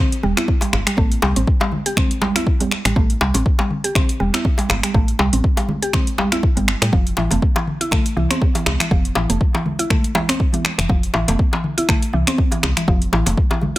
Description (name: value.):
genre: afro house.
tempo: 121 BPM.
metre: 4/4.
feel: swing 56% on 16ths.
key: A minor.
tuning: A4 = 444 Hz.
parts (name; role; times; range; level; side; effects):
mallet-like synth pluck; arpeggios; 0.0-13.8 s; E3 to G4; -22 LUFS; equal; chorus, sidechain pumping, digital delay.
afro-pop drum kit; drums; 0.1-13.8 s; finger snaps, hi-hat, toms; -22 LUFS; equal; none.
woody FM bass; bass; 0.2-13.3 s; E1 to A2; -21 LUFS; equal; sidechain pumping.
congas; percussion; 0.2-13.8 s; none; -28 LUFS; right 4 dB; none.
electronic kick drum; drums; 0.5-13.5 s; none; -17 LUFS; equal; overdrive.
djembe; percussion; 0.6-13.7 s; none; -24 LUFS; left 1 dB; none.
room: digital ambience.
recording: none.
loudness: -16 LUFS.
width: side -17 dB against mid.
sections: 0.0-13.8 A section.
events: none.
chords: 0.0 Am7; 6.9 Fmaj7.